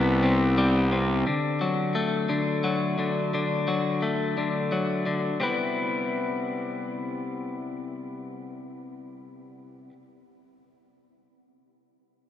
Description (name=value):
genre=rock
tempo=58 BPM (dotted quarters)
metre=6/8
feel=straight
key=C lydian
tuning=A4 = 441 Hz
part: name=twelve-string electric guitar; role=arpeggios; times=0.0-9.9 s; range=C3 to E4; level=-26 LUFS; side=left 2 dB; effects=spring reverb, slapback echo
part: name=fuzz picked electric bass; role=bass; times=0.0-1.2 s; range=C2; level=-22 LUFS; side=equal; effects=overdrive
room=light reverb, small room ambience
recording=none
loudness=-24 LUFS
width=side -10 dB against mid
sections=0.0-5.4 A section; 5.4-9.6 B section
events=none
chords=0.0 C5; 1.3 D; 5.4 Cmaj7